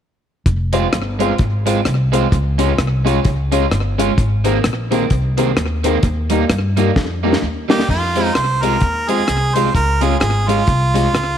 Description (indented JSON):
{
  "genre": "ska",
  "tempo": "129 BPM",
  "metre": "4/4",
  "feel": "swing 59% on 8ths",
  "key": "F minor",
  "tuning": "A4 = 437 Hz",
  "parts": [
    { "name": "upright bass", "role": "bass", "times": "0.5-11.4 s", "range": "F1 to G2", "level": "-18 LUFS", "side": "equal", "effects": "none" },
    { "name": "deep reggae drum kit", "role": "drums", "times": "0.5-11.3 s", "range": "crash cymbal, hi-hat, kick drum, rim click, snare drum", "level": "-19 LUFS", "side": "left 1 dB", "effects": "slapback echo" },
    { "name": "electric guitar at the edge of break-up", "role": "accompaniment", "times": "0.7-11.1 s", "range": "Eb3 to F4", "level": "-21 LUFS", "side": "right 10 dB", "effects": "wide subtle chorus, slapback echo" },
    { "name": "dark upright piano", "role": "stabs", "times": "0.7-11.0 s", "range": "Ab3 to Db5", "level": "-22 LUFS", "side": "left 12 dB", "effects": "none" },
    { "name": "clear harmonica", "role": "melody", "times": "7.7-11.4 s", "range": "F4 to C5", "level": "-18 LUFS", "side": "right 3 dB", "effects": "none" }
  ],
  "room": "light reverb, small room ambience",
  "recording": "1960s-style stereo with parts hard left and right",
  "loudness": "-14 LUFS",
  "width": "side -9 dB against mid",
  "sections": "0.5-7.9 A section; 7.9-11.4 B section",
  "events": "drum fill 7.0-7.9",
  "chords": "0.5 Fm; 2.3 Db; 4.2 Abadd9; 6.0 Eb; 7.9 Fm; 9.7 Db"
}